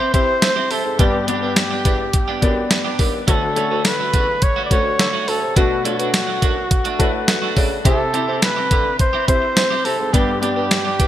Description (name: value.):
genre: 1980s-style pop.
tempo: 105 BPM.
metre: 4/4.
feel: straight.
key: unclear.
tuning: A4 = 440 Hz.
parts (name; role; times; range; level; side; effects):
breathy flugelhorn; melody; 0.0-11.1 s; F#4 to D5; -21 LUFS; equal; none.
warm baby grand piano; accompaniment; 0.0-11.1 s; G2 to A5; -24 LUFS; left 4 dB; none.
twelve-string electric guitar; riff; 0.0-11.1 s; A3 to G4; -26 LUFS; right 6 dB; lush chorus, digital delay.
dark bassoon; bass; 0.1-11.1 s; D2 to C4; -25 LUFS; equal; none.
clean 12-bit digital drum machine; drums; 0.1-11.1 s; hi-hat, kick drum, snare drum, tambourine; -18 LUFS; equal; gated reverb.
room: moderate lush hall reverb, RT60 2.8 s.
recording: bright 1980s-style digital production.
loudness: -15 LUFS.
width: side -12 dB against mid.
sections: 0.0-11.1 A section.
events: grand piano fill 6.7-7.9.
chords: 0.0 C; 1.0 G; 3.3 Dmaj7; 5.6 Bm7; 7.9 C; 10.1 G.